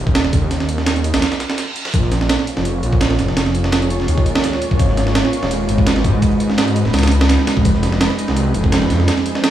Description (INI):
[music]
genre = drum and bass, jungle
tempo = 168 BPM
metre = 4/4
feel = straight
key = Bb minor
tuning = A4 = 440 Hz
[part]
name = detuned saw bass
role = bass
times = 0.0-9.1 s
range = Eb1 to Ab2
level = -17 LUFS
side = equal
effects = none
[part]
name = breakbeat sampler-style drum kit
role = drums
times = 0.1-9.5 s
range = hi-hat, kick drum, snare drum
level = -17 LUFS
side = right 2 dB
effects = studio reverb
[part]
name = dusty soul sampler-style drum kit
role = drums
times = 0.1-9.5 s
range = hi-hat, snare drum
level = -30 LUFS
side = right 3 dB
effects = high-pass filter on hats, studio reverb, high-pass filter on snare
[part]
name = reverse cymbal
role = sound effects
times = 1.4-1.9 s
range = none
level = -28 LUFS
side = right 3 dB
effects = none
[sound]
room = light reverb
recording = played on a big sound system in a bare room, stone room reverb, studio ambience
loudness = -14 LUFS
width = side -11 dB against mid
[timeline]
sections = 0.0-9.5 A section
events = break 1.2-1.9; reverse cymbal 1.4-1.9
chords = none